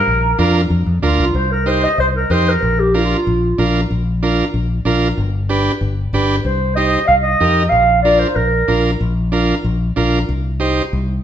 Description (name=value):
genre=latin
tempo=188 BPM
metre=4/4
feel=straight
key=C minor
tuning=A4 = 439 Hz
part: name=clean electric guitar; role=melody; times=0.0-0.5 s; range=Bb4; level=-17 LUFS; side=right 1 dB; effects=spring reverb
part: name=fingered electric bass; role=bass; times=0.1-11.2 s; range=G1 to F2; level=-18 LUFS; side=left 1 dB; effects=none
part: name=overdriven combo organ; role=accompaniment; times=0.4-10.8 s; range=D4 to C5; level=-19 LUFS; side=right 3 dB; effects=none
part: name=breathy clarinet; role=second line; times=1.0-3.7, 6.4-8.8 s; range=F4 to F5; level=-15 LUFS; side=right 1 dB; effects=none
room=moderate large studio reverb, RT60 1.2 s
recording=band playing live in one room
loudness=-13 LUFS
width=side -10 dB against mid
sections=0.0-1.3 A section; 1.3-11.2 B section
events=clean electric guitar solo 0.0-1.3; clarinet solo 1.3-11.2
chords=0.1 Bb; 1.3 Cm; 2.6 Bb; 5.2 G; 6.5 Cm; 7.7 Bb; 10.3 Cm